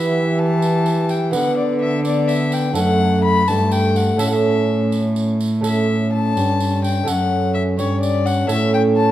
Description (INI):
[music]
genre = classical, renaissance-style consort dance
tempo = 84 BPM (dotted quarters)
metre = 6/8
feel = straight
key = unclear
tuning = A4 = 440 Hz
[part]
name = warm violin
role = melody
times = 0.0-9.1 s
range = C#5 to B5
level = -22 LUFS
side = left 5 dB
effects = none
[part]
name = lute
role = accompaniment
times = 0.0-9.1 s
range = F#2 to B4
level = -23 LUFS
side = right 5 dB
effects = none
[part]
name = warm trombone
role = accompaniment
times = 0.0-9.1 s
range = A3 to G4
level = -23 LUFS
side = left 2 dB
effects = none
[part]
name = dark cello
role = bass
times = 0.0-9.1 s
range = F#2 to E3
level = -19 LUFS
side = right 1 dB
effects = none
[part]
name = tambourine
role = percussion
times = 0.6-8.7 s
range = none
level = -34 LUFS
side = right 6 dB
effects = none
[sound]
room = moderate recital hall reverb, RT60 1.4 s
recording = dark, warm production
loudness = -16 LUFS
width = side -13 dB against mid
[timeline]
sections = 0.0-9.1 A section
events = none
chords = 0.0 Em; 1.3 Bm/D; 2.8 F#m; 4.2 A; 7.1 F#m; 8.5 A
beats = 0.62 | 1.33 2.04 | 2.75 3.47 | 4.19 4.92 | 5.64 6.37 | 7.08 7.79 | 8.50